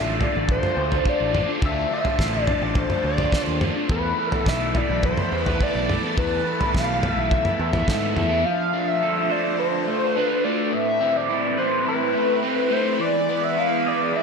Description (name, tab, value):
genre	psychedelic rock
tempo	106 BPM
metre	4/4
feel	straight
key	unclear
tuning	A4 = 440 Hz
part	overdriven synth lead	melody	0.0-14.2 s	B4 to F5	-23 LUFS	left 1 dB	chorus, phaser, analog delay
part	ensemble organ-string	sustained chords	0.0-14.2 s	E3 to B5	-31 LUFS	right 2 dB	ensemble chorus
part	crunchy overdriven guitar	riff	0.0-14.2 s	A2 to C5	-25 LUFS	equal	phaser
part	overdriven picked electric bass	bass	0.0-8.4 s	A1 to G#2	-27 LUFS	equal	none
part	cloth-damped thuddy drum kit	drums	0.2-8.3 s	kick drum, snare drum, toms	-25 LUFS	equal	none
room	wet lush hall reverb, RT60 1.8 s, small room ambience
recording	dreamy mix soaked in reverb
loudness	-20 LUFS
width	side -5 dB against mid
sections	0.0-8.5 A section; 8.5-14.2 B section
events	none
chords	0.0 Dm; 3.9 Esus4; 8.5 F6; 10.7 Amadd9; 13.0 E